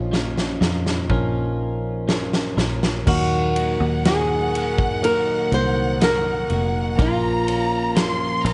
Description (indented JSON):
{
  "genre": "pop ballad",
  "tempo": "61 BPM",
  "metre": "4/4",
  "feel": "straight",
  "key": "Eb dorian from 3.1 s",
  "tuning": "A4 = 440 Hz",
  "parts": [
    { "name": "barky tine electric piano", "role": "accompaniment", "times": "0.0-8.5 s", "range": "Bb2 to Bb4", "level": "-30 LUFS", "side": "equal", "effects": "none" },
    { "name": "mellow French horn section", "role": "sustained chords", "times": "0.0-8.5 s", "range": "Eb3 to Bb4", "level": "-37 LUFS", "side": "equal", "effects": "none" },
    { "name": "twelve-string electric guitar", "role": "arpeggios", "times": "0.0-8.5 s", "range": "Bb2 to Bb4", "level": "-34 LUFS", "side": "equal", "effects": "none" },
    { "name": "fingered electric bass", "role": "bass", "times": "0.0-8.5 s", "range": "F1 to F2", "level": "-27 LUFS", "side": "equal", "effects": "none" },
    { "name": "huge arena drum kit", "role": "drums", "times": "0.1-8.5 s", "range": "crash cymbal, kick drum, ride cymbal, snare drum", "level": "-26 LUFS", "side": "equal", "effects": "none" },
    { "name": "flamenco guitar", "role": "melody", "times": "3.1-8.5 s", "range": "F4 to C5", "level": "-25 LUFS", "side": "equal", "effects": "slapback echo" },
    { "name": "rich studio violin section", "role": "second line", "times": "3.1-8.5 s", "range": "Gb5 to C6", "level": "-30 LUFS", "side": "equal", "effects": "slapback echo" }
  ],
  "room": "light reverb, studio ambience",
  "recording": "nothing above 10.7 kHz",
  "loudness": "-21 LUFS",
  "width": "mono",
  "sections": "0.0-3.1 A section; 3.1-8.5 B section",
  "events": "drum fill 0.0-3.1",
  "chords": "0.0 Bbm; 3.1 Ebm; 7.0 Bbm"
}